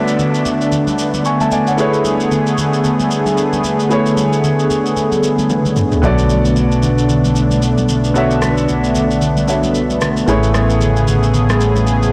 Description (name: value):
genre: amapiano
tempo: 113 BPM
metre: 4/4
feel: swing 58% on 16ths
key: B dorian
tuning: A4 = 440 Hz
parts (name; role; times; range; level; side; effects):
- warm grand piano; accompaniment; 0.0-12.1 s; A3 to C#6; -22 LUFS; equal; none
- warm analog pad; sustained chords; 0.0-12.1 s; C#3 to G#4; -18 LUFS; equal; chorus, tremolo
- downlifter and swell; sound effects; 0.0-1.8, 10.3-12.1 s; none; -37 LUFS; equal; none
- deep house drum kit; drums; 0.1-12.1 s; rim click, shaker, toms; -26 LUFS; equal; soft clipping on snare
- congas; percussion; 0.2-12.1 s; none; -26 LUFS; equal; none
- plucky analog bass; bass; 6.0-12.1 s; A1 to B1; -18 LUFS; equal; none
room: moderate lush hall reverb, RT60 2.0 s, digital ambience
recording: blown-out, overdriven recording, overdrive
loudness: -15 LUFS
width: mono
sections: 0.0-12.1 A section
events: drum fill 5.5-6.0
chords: 0.0 Bm9; 10.3 Amaj9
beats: 0.19 0.72 1.25 | 1.78 2.32 2.85 3.38 | 3.91 4.44 4.97 5.50 | 6.03 6.56 7.09 7.62 | 8.16 8.69 9.22 9.75 | 10.28 10.81 11.34 11.87